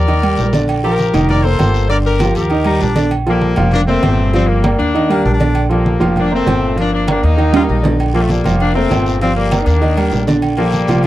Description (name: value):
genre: latin, salsa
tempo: 197 BPM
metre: 4/4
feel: straight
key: Bb major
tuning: A4 = 439 Hz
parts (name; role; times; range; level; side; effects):
- bright horn section; melody; 0.0-11.1 s; G3 to D5; -18 LUFS; left 4 dB; tape echo
- upright bass; bass; 0.0-11.1 s; F1 to Eb2; -16 LUFS; equal; none
- clear grand piano; accompaniment; 0.1-11.1 s; Bb2 to F5; -17 LUFS; right 2 dB; none
- agogo bells and timbales; percussion; 0.1-11.1 s; none; -23 LUFS; right 6 dB; none
- congas; percussion; 0.1-11.1 s; none; -21 LUFS; equal; none
- guiro; percussion; 0.1-3.1, 8.0-11.1 s; none; -33 LUFS; left 7 dB; none
- bright baritone saxophone; second line; 2.7-8.0 s; Bb3 to F4; -22 LUFS; left 4 dB; none
room: little or no reverb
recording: dry, close 1970s-style studio recording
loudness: -12 LUFS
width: side -14 dB against mid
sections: 0.0-3.1 A section; 3.1-11.1 A section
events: drum fill 7.5-8.0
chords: 0.1 Ebmaj7; 0.7 Bb; 1.3 F7sus4; 1.9 Gm7; 2.5 Ebmaj7; 3.1 Bb5; 3.7 Fsus4; 4.3 Gm7; 4.9 Ebmaj7; 5.6 Bbmaj7; 6.2 Fsus4; 6.8 Gm7; 7.4 Ebmaj7; 8.0 Bbmaj7; 8.6 Fsus4; 9.2 Gm7; 9.8 Ebmaj7; 10.4 Bbmaj7